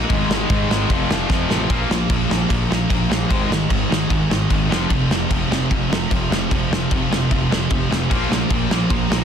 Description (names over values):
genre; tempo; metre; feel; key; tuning
punk rock; 150 BPM; 4/4; straight; unclear; A4 = 438 Hz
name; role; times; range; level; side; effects
high-gain distorted guitar; riff; 0.0-9.2 s; F2 to Bb3; -24 LUFS; right 1 dB; distortion
fuzz picked electric bass; bass; 0.0-9.2 s; F1 to Ab2; -25 LUFS; equal; overdrive
sludgy distorted guitar; riff; 0.1-9.2 s; F2 to Bb3; -24 LUFS; right 10 dB; overdrive
tight distorted guitar; riff; 0.1-9.2 s; F2 to Bb3; -24 LUFS; left 11 dB; distortion
loose indie drum kit; drums; 0.1-9.2 s; crash cymbal, kick drum, snare drum; -21 LUFS; equal; none
room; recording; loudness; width
light reverb; dense, heavily limited modern master; -16 LUFS; side -8 dB against mid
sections
0.0-1.7 A section; 1.7-9.2 B section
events
drum fill 1.3-1.7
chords
0.1 Ab5; 0.9 F; 1.7 Bb5; 3.3 Ab5; 4.7 F5; 8.1 Bb5